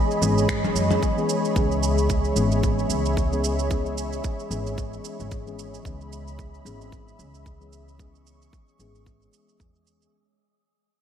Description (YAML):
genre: organic downtempo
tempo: 112 BPM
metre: 4/4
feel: swing 57% on 16ths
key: C# minor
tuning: A4 = 439 Hz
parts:
  - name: muted felt-like synth keys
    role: accompaniment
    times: 0.0-10.2 s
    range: E3 to G#4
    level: -27 LUFS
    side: left 1 dB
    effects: chorus, sidechain pumping, low-pass filter, ping-pong delay
  - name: warm analog pad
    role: sustained chords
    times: 0.0-10.1 s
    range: G#4 to C#6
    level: -29 LUFS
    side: right 1 dB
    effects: chorus, sidechain pumping
  - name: wind-like tuned noise texture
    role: texture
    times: 0.0-10.1 s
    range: G#3 to G#4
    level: -36 LUFS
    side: right 2 dB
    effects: built-in reverb
  - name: electronic shaker, finger snaps and congas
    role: drums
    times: 0.1-10.1 s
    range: none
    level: -32 LUFS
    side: equal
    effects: studio reverb
  - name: upright bass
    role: bass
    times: 0.2-10.1 s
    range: G#1 to F#2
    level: -28 LUFS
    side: equal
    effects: sidechain pumping
  - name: electronic kick drum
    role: drums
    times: 0.5-9.7 s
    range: none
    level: -27 LUFS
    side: equal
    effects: studio reverb
room: wet concert hall reverb, RT60 2.4 s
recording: big arena sound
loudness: -21 LUFS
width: side -9 dB against mid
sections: 0.0-10.1 A section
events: fade-out 0.0-10.1; filter sweep on synth keys 0.0-10.1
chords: 0.0 E6; 1.6 C#m7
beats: 0.49 1.03 | 1.56 2.10 2.63 3.17 | 3.70 4.24 4.78 5.31 | 5.85 6.38 6.92 7.45 | 7.99 8.53 9.06 9.60